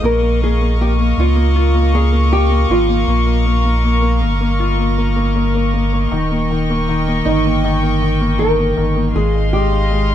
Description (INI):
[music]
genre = pop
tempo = 79 BPM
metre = 4/4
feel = straight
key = unclear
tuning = A4 = 440 Hz
[part]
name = nylon-string guitar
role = melody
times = 0.0-10.1 s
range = Eb4 to Bb4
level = -20 LUFS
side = right 1 dB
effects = none
[part]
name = clear concert grand piano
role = accompaniment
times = 0.0-10.1 s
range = Eb3 to F4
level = -20 LUFS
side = left 3 dB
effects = none
[part]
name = warm studio string section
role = sustained chords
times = 0.0-10.1 s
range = Ab3 to Db6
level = -22 LUFS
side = left 1 dB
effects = none
[part]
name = warm sub bass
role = bass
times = 0.0-10.1 s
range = Eb1 to Db2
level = -16 LUFS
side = equal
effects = none
[sound]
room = light reverb, studio reverb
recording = none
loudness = -13 LUFS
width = side -10 dB against mid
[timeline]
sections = 0.0-10.1 A section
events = none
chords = 0.0 Bbm; 6.1 Eb7; 9.2 Ab6